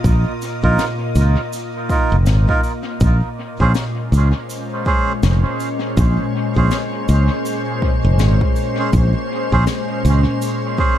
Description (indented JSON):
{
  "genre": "ambient dub",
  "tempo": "81 BPM",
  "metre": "4/4",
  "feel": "swing 60% on 16ths",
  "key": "Bb minor",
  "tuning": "A4 = 442 Hz",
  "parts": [
    { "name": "soft additive organ-like pad", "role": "sustained chords", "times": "0.0-11.0 s", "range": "Bb2 to Eb5", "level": "-22 LUFS", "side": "left 1 dB", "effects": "ensemble chorus, built-in reverb" },
    { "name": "fingered electric bass", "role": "bass", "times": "0.0-10.2 s", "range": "F1 to Db2", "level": "-14 LUFS", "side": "equal", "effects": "tube saturation" },
    { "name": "cabasa and snare drum", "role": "drums", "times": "0.0-10.6 s", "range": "none", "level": "-30 LUFS", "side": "left 6 dB", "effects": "dub echo" },
    { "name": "electronic kick drum", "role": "drums", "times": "0.0-11.0 s", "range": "none", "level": "-19 LUFS", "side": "equal", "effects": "overdrive" },
    { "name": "melodica", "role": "stabs", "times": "0.6-11.0 s", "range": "Db4 to C5", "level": "-24 LUFS", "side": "right 4 dB", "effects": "vintage 12-bit sampler grit, dub echo" }
  ],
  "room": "studio reverb",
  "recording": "echo-heavy mix",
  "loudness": "-15 LUFS",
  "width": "side -11 dB against mid",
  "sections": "0.0-11.0 A section",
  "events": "none",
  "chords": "0.0 Bbm9",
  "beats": "| 0.04 0.79 1.53 2.27 | 3.01 3.75 4.49 5.23 | 5.97 6.71 7.45 8.19 | 8.93 9.68 10.42"
}